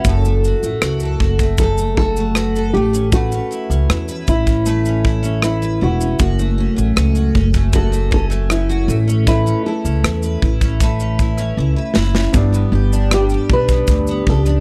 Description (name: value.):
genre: acoustic pop.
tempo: 78 BPM.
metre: 4/4.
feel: straight.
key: A mixolydian.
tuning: A4 = 440 Hz.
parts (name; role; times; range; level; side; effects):
nylon-string guitar; melody; 0.0-14.4 s; E4 to B4; -24 LUFS; equal; none.
picked steel-string acoustic guitar; accompaniment; 0.0-14.6 s; F#2 to B4; -23 LUFS; equal; double-tracked.
upright bass; bass; 0.0-14.6 s; E1 to E2; -20 LUFS; equal; none.
modern studio drum kit; drums; 0.0-14.6 s; kick drum, rim click, shaker, snare drum; -20 LUFS; equal; none.
felt-muted upright piano; accompaniment; 12.3-14.6 s; G3 to D5; -27 LUFS; equal; none.
room: studio reverb.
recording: dry, close 1970s-style studio recording.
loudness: -16 LUFS.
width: mono.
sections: 0.0-12.3 A section; 12.3-14.6 B section.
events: drum fill 11.6-12.3.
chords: 0.0 F#m; 2.7 Aadd9; 6.2 F#m; 8.9 Aadd9; 12.3 G.